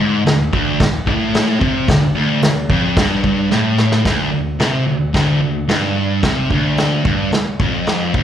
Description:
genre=garage rock duo or trio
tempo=110 BPM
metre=4/4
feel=straight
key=unclear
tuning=A4 = 440 Hz
part: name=thick fuzz guitar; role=riff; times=0.0-8.2 s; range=D2 to C3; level=-15 LUFS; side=equal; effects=distortion, slapback echo
part: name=soft brush drum kit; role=drums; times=0.3-8.2 s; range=crash cymbal, kick drum, snare drum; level=-19 LUFS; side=equal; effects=none
room=light reverb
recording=live gig heard through the venue's PA, club reverb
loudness=-14 LUFS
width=side -10 dB against mid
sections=0.0-4.0 A section; 4.0-8.2 B section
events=drum fill 3.5-4.0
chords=none

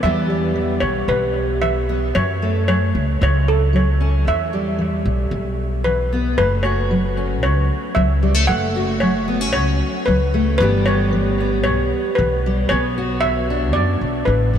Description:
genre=acoustic folk duo or small band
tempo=114 BPM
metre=4/4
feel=straight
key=E dorian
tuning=A4 = 440 Hz
part: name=steel pan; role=melody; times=0.0-14.6 s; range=A4 to F#5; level=-21 LUFS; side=equal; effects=tape echo
part: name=fingerpicked steel-string acoustic guitar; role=accompaniment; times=0.0-14.6 s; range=E2 to G4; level=-21 LUFS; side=left 1 dB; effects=wide subtle chorus
part: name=upright bass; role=bass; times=0.0-14.6 s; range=F#1 to F#2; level=-20 LUFS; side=equal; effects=none
room=moderate huge ambient reverb, RT60 8.5 s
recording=dreamy mix soaked in reverb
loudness=-16 LUFS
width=side -9 dB against mid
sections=0.0-6.4 A section; 6.4-14.6 B section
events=none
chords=0.0 Em; 2.2 F#m; 4.3 Em; 6.4 F#m; 10.6 Em/G; 12.7 Bmadd9

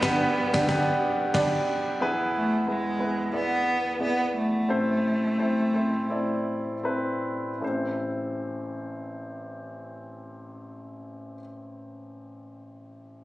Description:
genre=piano-driven pop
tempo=77-91 BPM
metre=4/4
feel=swing 56% on 16ths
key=A minor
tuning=A4 = 442 Hz
part: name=warm cello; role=melody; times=0.0-6.8 s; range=G#3 to B3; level=-27 LUFS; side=right 1 dB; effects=plate reverb
part: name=dark French horn section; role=second line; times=0.0-1.5 s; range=D3 to D4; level=-33 LUFS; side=right 2 dB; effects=none
part: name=warm grand piano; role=accompaniment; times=0.0-13.2 s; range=A1 to D5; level=-28 LUFS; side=equal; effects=none
part: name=vintage muted picked electric bass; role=bass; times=0.0-1.6 s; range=G1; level=-31 LUFS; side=equal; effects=none
part: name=huge arena drum kit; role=drums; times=0.0-1.6 s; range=crash cymbal, kick drum, snare drum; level=-32 LUFS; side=equal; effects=none
room=moderate studio reverb, RT60 0.8 s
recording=recorded on a phone in the room, studio reverb, nothing above 10.5 kHz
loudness=-24 LUFS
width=side -16 dB against mid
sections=0.0-2.0 A section; 2.0-7.6 B section; 7.6-10.7 C section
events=band accent 0.0-2.0; slowing down 2.0-7.6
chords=0.0 G; 2.0 E; 4.7 Am

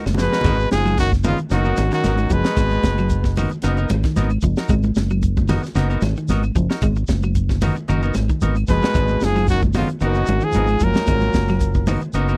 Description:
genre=afrobeat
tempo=113 BPM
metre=4/4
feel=swing 54% on 16ths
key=G# dorian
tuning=A4 = 440 Hz
part: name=semi-hollow electric guitar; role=stabs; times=0.0-12.4 s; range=B3 to A#4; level=-29 LUFS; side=equal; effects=none
part: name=fingered electric bass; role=bass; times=0.1-12.3 s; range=F#1 to G#1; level=-23 LUFS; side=equal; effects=none
part: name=tight funk drum kit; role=drums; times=0.1-12.4 s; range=hi-hat, kick drum, snare drum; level=-24 LUFS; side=equal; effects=none
part: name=claves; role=percussion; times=0.1-12.0 s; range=none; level=-44 LUFS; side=equal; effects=none
part: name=congas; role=percussion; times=0.1-12.0 s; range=none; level=-28 LUFS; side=equal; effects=none
part: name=shekere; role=percussion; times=0.1-12.4 s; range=none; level=-34 LUFS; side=equal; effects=none
part: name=clear trumpet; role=melody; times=0.2-3.4, 8.7-11.9 s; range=E#4 to B4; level=-25 LUFS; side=equal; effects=none
part: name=clear trombone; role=second line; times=0.2-3.4, 8.7-11.9 s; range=C#3 to G#3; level=-30 LUFS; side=equal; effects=none
part: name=raspy baritone saxophone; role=second line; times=0.2-3.4, 8.7-11.9 s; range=E#2 to B2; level=-32 LUFS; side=equal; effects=none
part: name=clean electric guitar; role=arpeggios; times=0.2-12.3 s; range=C#3 to G#3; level=-27 LUFS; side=equal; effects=tremolo
room=little or no reverb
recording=dry, close 1970s-style studio recording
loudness=-19 LUFS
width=mono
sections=0.4-12.4 A section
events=drum fill 0.0-0.4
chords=0.4 G#m9

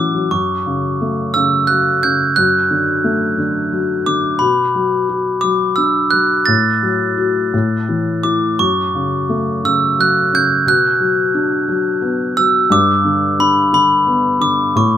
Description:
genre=children's music, lullaby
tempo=58 BPM (dotted quarters)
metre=6/8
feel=rubato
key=unclear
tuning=A4 = 443 Hz
part: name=glockenspiel with hard plastic mallets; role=melody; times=0.0-15.0 s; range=B5 to A6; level=-15 LUFS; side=right 1 dB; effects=none
part: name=felt-muted upright piano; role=accompaniment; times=0.0-15.0 s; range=F#2 to F#5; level=-18 LUFS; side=left 3 dB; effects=none
room=light reverb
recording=minimal, uncompressed stereo recording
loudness=-13 LUFS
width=side -10 dB against mid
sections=0.3-15.0 A section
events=none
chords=0.3 F#m; 2.4 D/F#; 4.4 Bm; 6.5 F#m/A; 7.5 A5; 8.6 F#m; 10.7 Bm; 12.7 G

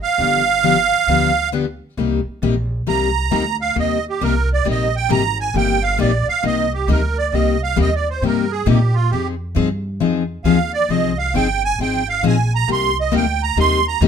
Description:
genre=acoustic string swing (jazz manouche)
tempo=134 BPM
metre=4/4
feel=swing 63% on 8ths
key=C minor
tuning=A4 = 440 Hz
part: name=musette accordion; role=melody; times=0.0-14.0 s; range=F4 to C6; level=-19 LUFS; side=right 6 dB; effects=none
part: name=picked steel-string acoustic guitar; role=accompaniment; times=0.2-14.1 s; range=C3 to Ab4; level=-19 LUFS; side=left 7 dB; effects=none
part: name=upright bass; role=bass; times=0.2-14.1 s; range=G1 to Bb2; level=-21 LUFS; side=right 1 dB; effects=none
room=light reverb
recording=minimal, uncompressed stereo recording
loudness=-16 LUFS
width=side -7 dB against mid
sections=0.0-2.0 A section; 2.0-14.1 B section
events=accordion solo 2.0-14.1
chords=0.2 G7; 2.0 Cm7; 9.1 Fm7; 12.7 Cm7

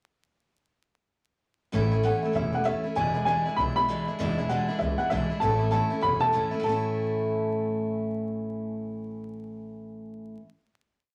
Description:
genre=rock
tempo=196 BPM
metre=4/4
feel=swing 62% on 8ths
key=A major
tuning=A4 = 439 Hz
part: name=picked steel-string acoustic guitar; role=accompaniment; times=1.7-10.5 s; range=E2 to E4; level=-31 LUFS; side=equal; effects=none
part: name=upright bass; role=bass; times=1.7-10.3 s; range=E1 to C#2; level=-34 LUFS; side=equal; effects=none
part: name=dark upright piano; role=melody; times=2.0-10.4 s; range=E5 to B5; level=-30 LUFS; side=equal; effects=none
room=wet small room reverb, RT60 0.5 s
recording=vinyl crackle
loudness=-27 LUFS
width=mono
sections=1.7-6.6 A section; 6.6-9.1 final chord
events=none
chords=1.7 A; 3.0 E7; 5.4 A

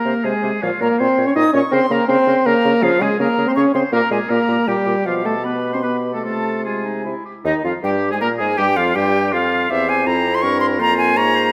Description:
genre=quick classical-period movement for wind quintet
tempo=162 BPM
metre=3/4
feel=rubato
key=F minor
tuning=A4 = 442 Hz
part: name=bright concert flute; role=melody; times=0.0-11.5 s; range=Eb5 to Eb6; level=-24 LUFS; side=equal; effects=none
part: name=clear oboe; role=second line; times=0.0-11.5 s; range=Eb4 to Eb5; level=-26 LUFS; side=equal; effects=none
part: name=mellow French horn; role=accompaniment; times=0.0-11.5 s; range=Eb3 to Eb4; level=-21 LUFS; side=equal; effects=none
part: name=bright clarinet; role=accompaniment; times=0.1-11.5 s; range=Eb4 to Db5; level=-30 LUFS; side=equal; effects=none
part: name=mellow bassoon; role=bass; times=0.1-11.5 s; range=Eb2 to Db3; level=-25 LUFS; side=equal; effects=none
room=moderate scoring stage reverb, RT60 1.6 s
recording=none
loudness=-17 LUFS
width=mono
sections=0.0-7.5 A section; 7.5-11.5 B section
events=none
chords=0.0 Ab/C; 0.6 Bbm; 1.7 Bbm/Db; 2.8 Db5; 3.9 Gm/Bb; 5.1 G/B; 6.2 Fm/C; 7.1 C; 7.5 Fm; 8.6 Fsus2; 9.7 C/E; 10.8 Fm

